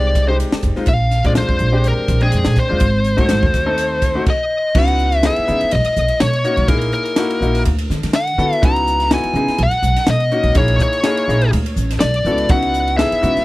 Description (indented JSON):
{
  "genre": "electric jazz fusion",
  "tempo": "124 BPM",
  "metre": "4/4",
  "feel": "swing 54% on 16ths",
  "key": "C# dorian from 4.8 s",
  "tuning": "A4 = 440 Hz",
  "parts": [
    { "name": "biting lead guitar", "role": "melody", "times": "0.0-13.4 s", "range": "Ab4 to A#5", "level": "-18 LUFS", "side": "left 1 dB", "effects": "overdrive" },
    { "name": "bright baby grand piano", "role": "accompaniment", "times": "0.0-13.4 s", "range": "Ab3 to G5", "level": "-22 LUFS", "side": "left 2 dB", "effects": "none" },
    { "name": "upright bass", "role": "bass", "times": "0.0-13.4 s", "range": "F1 to D3", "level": "-18 LUFS", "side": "equal", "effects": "none" },
    { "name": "crisp fusion drum kit", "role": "drums", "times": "0.2-13.4 s", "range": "crash cymbal, hi-hat, kick drum, ride cymbal, snare drum", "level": "-20 LUFS", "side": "equal", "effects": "none" }
  ],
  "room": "little or no reverb",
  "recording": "none",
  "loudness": "-14 LUFS",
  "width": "side -18 dB against mid",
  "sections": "0.0-4.8 A section; 4.8-13.4 B section",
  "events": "none",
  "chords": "0.0 Fm9; 0.9 Bb9; 2.8 Ab7b9; 4.8 C#m11; 5.7 Bmaj9; 6.7 F#13/A#; 7.7 D69; 8.6 C#m11; 9.6 Bmaj9; 10.6 C#m69/A#; 11.5 D69; 12.5 C#m11",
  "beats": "0.39 | 0.88 1.36 1.85 2.33 | 2.81 3.30 3.78 4.27 | 4.75 5.24 5.72 6.21 | 6.69 7.17 7.66 8.14 | 8.63 9.11 9.60 10.08 | 10.57 11.05 11.54 12.02 | 12.50 12.99"
}